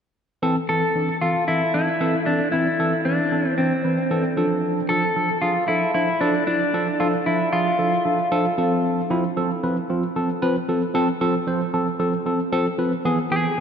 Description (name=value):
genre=pop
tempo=114 BPM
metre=4/4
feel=straight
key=A harmonic minor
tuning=A4 = 440 Hz
part: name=tine electric piano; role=accompaniment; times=0.4-13.6 s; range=E3 to C5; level=-21 LUFS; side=right 1 dB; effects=phaser
part: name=clean electric guitar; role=melody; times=0.7-8.5, 13.3-13.6 s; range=C4 to A4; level=-22 LUFS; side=left 1 dB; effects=spring reverb, tape echo
room=wet cathedral reverb, RT60 5.2 s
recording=dreamy mix soaked in reverb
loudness=-19 LUFS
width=side -7 dB against mid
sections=0.4-13.6 A section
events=none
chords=0.4 Am; 4.4 Dm; 8.6 F; 13.1 E